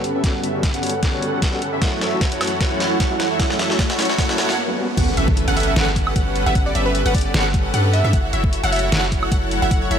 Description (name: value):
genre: future bass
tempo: 152 BPM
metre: 4/4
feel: swing 55% on 16ths, half-time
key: unclear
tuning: A4 = 441 Hz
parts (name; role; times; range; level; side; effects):
- overdriven tine electric piano; accompaniment; 0.0-4.9 s; F#3 to C#5; -27 LUFS; left 3 dB; fast tremolo, sidechain pumping, ping-pong delay
- airy breathy pad; sustained chords; 0.0-10.0 s; F#2 to F#5; -32 LUFS; right 1 dB; chorus, sidechain pumping
- big bright polysynth; riff; 0.0-10.0 s; C#4 to F#5; -22 LUFS; right 1 dB; wide subtle chorus, sidechain pumping
- dubstep drum kit; drums; 0.0-10.0 s; crash cymbal, hi-hat, snare drum, woodblock; -24 LUFS; equal; high-pass filter on snare, high-pass filter on hats, high-pass filter on perc, high-pass filter on cymbals, high-pass filter on room
- riser and impact; sound effects; 1.6-6.6 s; none; -29 LUFS; right 1 dB; none
- electronic kick drum; drums; 0.2-9.8 s; none; -20 LUFS; equal; overdrive
- wide unison pluck; arpeggios; 5.0-10.0 s; E5 to F#5; -29 LUFS; equal; sidechain pumping, ping-pong delay
- long sustained 808-style bass; bass; 5.0-10.0 s; F#1 to G2; -21 LUFS; equal; sidechain pumping
- plucky unison lead; melody; 5.5-10.0 s; B4 to F#5; -26 LUFS; right 1 dB; analog chorus, sidechain pumping, tape echo
room: light reverb, digital ambience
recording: none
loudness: -16 LUFS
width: side -8 dB against mid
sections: 0.0-5.0 A section; 5.0-10.0 B section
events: build-up 0.0-5.0; drum fill 0.0-4.6; filter sweep on analog polysynth 0.0-5.0; riser 1.6-5.0; break 4.6-5.0; drop 5.0-10.0; impact 5.0-6.6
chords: 0.0 Gmaj9#11; 1.8 F#m7; 4.8 Gmaj7#11; 5.0 Gmaj9#11; 8.1 B7sus2/F# (rootless)